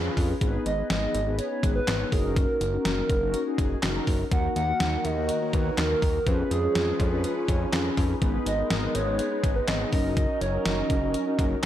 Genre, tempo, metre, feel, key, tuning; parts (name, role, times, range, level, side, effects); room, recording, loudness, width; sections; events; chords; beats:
synth-pop; 123 BPM; 4/4; straight; A4 = 440 Hz
hollow clarinet-like synth lead; melody; 0.0-11.7 s; Ab4 to Gb5; -29 LUFS; right 2 dB; chorus, tremolo
mellow synth brass; accompaniment; 0.0-11.7 s; Bb3 to Db5; -30 LUFS; left 2 dB; chorus
fat analog bass; bass; 0.0-11.7 s; Gb1 to F2; -29 LUFS; equal
detuned 8-bit digital drum machine; drums; 0.2-11.7 s; handclaps, hi-hat, kick drum, snare drum; -27 LUFS; equal
phased analog pad; sustained chords; 4.3-11.7 s; Eb3 to Cb5; -35 LUFS; left 1 dB; phaser, chorus
moderate lush hall reverb, RT60 1.6 s, digital ambience; big arena sound; -23 LUFS; side -12 dB against mid
0.0-11.7 A section
0.4 Abm; 2.1 Gb6; 4.3 Ebm; 6.3 Db7/F; 8.2 Abm; 9.9 Gb6
| 0.41 0.90 1.39 1.88 | 2.36 2.85 3.34 3.83 | 4.32 4.80 5.29 5.78 | 6.27 6.75 7.24 7.73 | 8.22 8.71 9.19 9.68 | 10.17 10.66 11.14 11.63